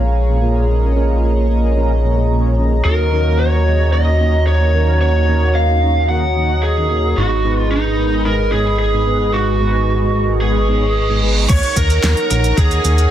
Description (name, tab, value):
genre	synthwave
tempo	111 BPM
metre	4/4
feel	straight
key	Eb minor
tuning	A4 = 440 Hz
part	chorused pulse-width pad	sustained chords	0.0-13.1 s	Eb4 to Db6	-23 LUFS	left 1 dB	sidechain pumping
part	mellow synth brass	stabs	0.0-11.5 s	Ab2 to Eb5	-21 LUFS	right 1 dB	chorus, tape echo
part	chorused synth bass	bass	0.0-13.1 s	Ab1 to Eb2	-16 LUFS	equal	sidechain pumping
part	lead guitar through a small cranked amp	melody	2.8-13.1 s	Eb4 to Gb5	-18 LUFS	right 2 dB	overdrive, tape echo
part	reverse cymbal	sound effects	10.7-11.5 s	none	-23 LUFS	right 4 dB	none
part	string machine, violins	second line	11.5-13.1 s	Ab5 to Db6	-25 LUFS	left 1 dB	ensemble chorus, tape echo
part	electronic kick drum	drums	11.5-12.7 s	none	-16 LUFS	equal	overdrive, studio reverb
part	pop drum kit	drums	11.5-13.1 s	crash cymbal, handclaps, hi-hat, shaker, snare drum	-22 LUFS	equal	low-pass filter on hats, studio reverb, low-pass filter on cymbals, low-pass filter on perc, low-pass filter on snare
room	light reverb, digital ambience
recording	dense, heavily limited modern master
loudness	-13 LUFS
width	side -11 dB against mid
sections	0.0-11.5 A section; 11.5-13.1 B section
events	filter sweep on analog polysynth 0.0-11.5; reverse cymbal 10.7-11.5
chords	0.0 Bbm7; 2.8 Ebm7; 7.2 Abm; 11.5 Ebm7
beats	0.14 | 0.69 1.23 1.77 2.31 | 2.85 3.39 3.93 4.47 | 5.01 5.55 6.09 6.63 | 7.17 7.71 8.25 8.79 | 9.33 9.87 10.41 10.96 | 11.49 12.04 12.58